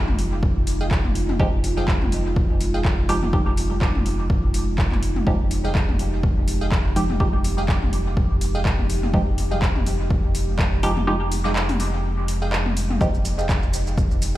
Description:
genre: dub techno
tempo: 124 BPM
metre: 4/4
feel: swing 56% on 16ths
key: F minor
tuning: A4 = 440 Hz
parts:
  - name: warbly tape-like pad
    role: sustained chords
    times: 0.0-14.4 s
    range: Ab3 to G4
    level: -30 LUFS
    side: right 1 dB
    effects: chorus, built-in reverb, sidechain pumping
  - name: round analog bass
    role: bass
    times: 0.0-14.4 s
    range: F1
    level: -24 LUFS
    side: equal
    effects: tube saturation, sidechain pumping
  - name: electronic toms and congas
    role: percussion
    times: 0.1-13.0 s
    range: none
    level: -32 LUFS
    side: left 2 dB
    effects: overdrive, sidechain pumping on perc, sidechain pumping on toms, dub echo
  - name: deep house drum kit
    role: drums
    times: 0.2-14.3 s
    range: handclaps, hi-hat, shaker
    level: -30 LUFS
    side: equal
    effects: overdrive, dub echo
  - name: electronic kick drum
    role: drums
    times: 0.4-14.1 s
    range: none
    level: -22 LUFS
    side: equal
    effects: overdrive
  - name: wavetable chord stab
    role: riff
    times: 0.8-13.5 s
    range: Ab4 to G5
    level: -35 LUFS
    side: right 2 dB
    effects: sidechain pumping, dub echo
  - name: filtered dub chord stab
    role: stabs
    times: 1.4-13.1 s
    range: F3 to G4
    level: -29 LUFS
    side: right 1 dB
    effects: chorus, phaser, dub echo
room: little or no reverb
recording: played on a big sound system in a bare room, stone room reverb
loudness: -19 LUFS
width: side -15 dB against mid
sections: 0.0-13.0 A section; 13.0-14.4 A section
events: kick drops out 11.1-13.0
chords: 0.0 Fm9

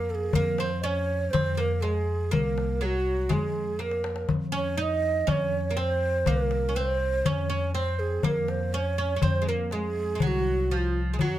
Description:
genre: Arabic maqam ensemble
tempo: 122 BPM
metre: 4/4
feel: straight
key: F maqam kurd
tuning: A4 = 445 Hz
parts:
  - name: breathy mellow ney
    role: melody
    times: 0.0-11.4 s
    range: F4 to Eb5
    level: -28 LUFS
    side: right 3 dB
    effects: slapback echo
  - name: oud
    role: second line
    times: 0.0-11.4 s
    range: F3 to Eb4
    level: -32 LUFS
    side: right 1 dB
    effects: none
  - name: upright bass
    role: bass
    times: 0.0-11.4 s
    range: C2 to F2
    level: -29 LUFS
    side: left 1 dB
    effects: none
  - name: darbuka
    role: percussion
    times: 0.1-11.3 s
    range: none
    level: -29 LUFS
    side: left 3 dB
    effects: none
room: little or no reverb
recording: close, detailed microphones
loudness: -24 LUFS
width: side -13 dB against mid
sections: 0.0-11.4 A section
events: drum fill 3.8-4.3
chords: none

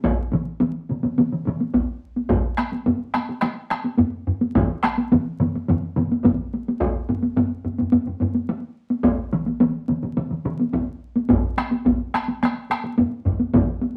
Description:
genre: japanese traditional, taiko drum ensemble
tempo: 107 BPM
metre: 4/4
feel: straight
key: none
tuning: none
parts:
  - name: taiko ensemble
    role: percussion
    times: 0.0-13.9 s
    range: none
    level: -23 LUFS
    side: equal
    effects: none
  - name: taiko ensemble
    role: percussion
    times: 0.0-13.7 s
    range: none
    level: -28 LUFS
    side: equal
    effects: none
  - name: taiko ensemble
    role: percussion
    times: 0.3-13.7 s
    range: none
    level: -28 LUFS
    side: equal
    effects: none
  - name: taiko ensemble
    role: percussion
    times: 2.3-13.7 s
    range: none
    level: -28 LUFS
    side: equal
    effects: none
room: wet studio reverb, RT60 0.6 s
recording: vinyl crackle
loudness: -22 LUFS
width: mono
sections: 0.0-14.0 A section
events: none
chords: none

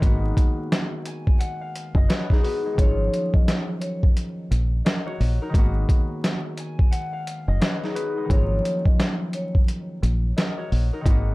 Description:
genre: hip hop, boom-bap hip-hop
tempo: 87 BPM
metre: 4/4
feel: swing 62% on 16ths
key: G# dorian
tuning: A4 = 439 Hz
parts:
  - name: concert harp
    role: accompaniment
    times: 0.0-11.3 s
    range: D#3 to G#5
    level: -29 LUFS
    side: left 2 dB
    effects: cassette tape, high-pass filter, low-pass filter
  - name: deep dub fingered electric bass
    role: bass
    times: 0.0-11.3 s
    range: F#1 to A#1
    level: -22 LUFS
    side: equal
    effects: none
  - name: boom bap sampler-style drum kit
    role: drums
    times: 0.0-11.3 s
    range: hi-hat, kick drum, snare drum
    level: -20 LUFS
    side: equal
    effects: none
  - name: vibraphone with soft mallets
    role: melody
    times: 2.8-4.0, 8.3-9.5 s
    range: C#5 to D#5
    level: -30 LUFS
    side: equal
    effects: high-pass filter, low-pass filter, plate reverb, tape echo
room: light reverb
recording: dark, warm production, vinyl crackle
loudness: -20 LUFS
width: side -22 dB against mid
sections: 0.0-11.3 A section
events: break 6.9-8.3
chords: 0.0 G#m7; 2.8 D#m7/G#; 5.5 G#m7; 8.3 D#m7/G#

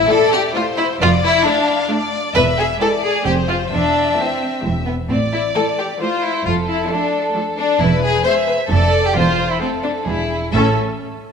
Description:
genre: cinematic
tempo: 132 BPM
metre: 3/4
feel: straight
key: A minor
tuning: A4 = 440 Hz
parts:
  - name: rich chamber violin section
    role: melody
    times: 0.0-10.8 s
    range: G#4 to F5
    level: -22 LUFS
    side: left 2 dB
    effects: none
  - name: rich chamber violin section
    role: second line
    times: 0.0-10.8 s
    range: B3 to C5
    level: -17 LUFS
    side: left 2 dB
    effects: none
  - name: rich symphonic viola section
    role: accompaniment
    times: 0.1-10.8 s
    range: E3 to A4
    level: -26 LUFS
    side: right 1 dB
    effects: none
  - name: rich chamber cello section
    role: bass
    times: 1.0-10.8 s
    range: E2 to A2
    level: -22 LUFS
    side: right 3 dB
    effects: none
  - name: rich chamber double bass section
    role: bass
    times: 1.0-10.8 s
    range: E1 to A1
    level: -23 LUFS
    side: right 2 dB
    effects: none
room: wet scoring stage reverb, RT60 1.9 s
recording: none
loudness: -15 LUFS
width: side -6 dB against mid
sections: 0.0-10.5 A section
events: none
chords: 0.0 Am; 1.0 Dm/F; 2.4 E; 3.3 F; 3.7 Am/E; 4.6 E; 5.1 Am; 6.5 Dm/F; 7.8 E; 8.7 Dm/F; 9.2 Am/E; 10.1 E7; 10.5 A

